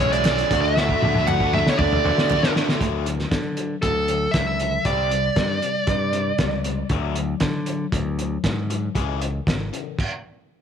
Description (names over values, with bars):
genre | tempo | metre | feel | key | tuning
indie rock | 117 BPM | 4/4 | straight | D lydian | A4 = 440 Hz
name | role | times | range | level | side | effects
dark smooth lead guitar | melody | 0.0-6.6 s | A4 to F#5 | -23 LUFS | right 2 dB | overdrive, tape echo
analog string pad | sustained chords | 0.0-2.8 s | G#4 to E6 | -35 LUFS | equal | ensemble chorus
overdriven semi-hollow guitar | riff | 0.0-10.0 s | C3 to G#4 | -28 LUFS | left 14 dB | phaser
thick fuzz guitar | riff | 0.0-2.8 s | D3 to G#4 | -27 LUFS | right 14 dB | distortion, ensemble chorus, tape echo
modern bright picked electric bass | bass | 0.0-9.7 s | G#1 to D3 | -26 LUFS | equal | none
cloth-damped thuddy drum kit | drums | 0.1-10.1 s | crash cymbal, hi-hat, kick drum, snare drum, toms | -24 LUFS | equal | none
group handclap | percussion | 0.2-2.4 s | none | -35 LUFS | right 16 dB | none
room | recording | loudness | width
light reverb, studio reverb | 1960s-style stereo with parts hard left and right | -19 LUFS | side -8 dB against mid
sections
0.0-2.8 A section; 2.8-10.6 B section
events
drum fill 0.8-2.8; stop 10.0-10.6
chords
0.0 C#m; 0.5 D6; 2.8 D; 4.9 C5; 6.9 D; 9.0 C#m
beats
0.25 | 0.76 1.27 1.78 2.30 | 2.81 3.32 3.83 4.34 | 4.85 5.37 5.88 6.39 | 6.91 7.42 7.93 8.44 | 8.96 9.47 9.98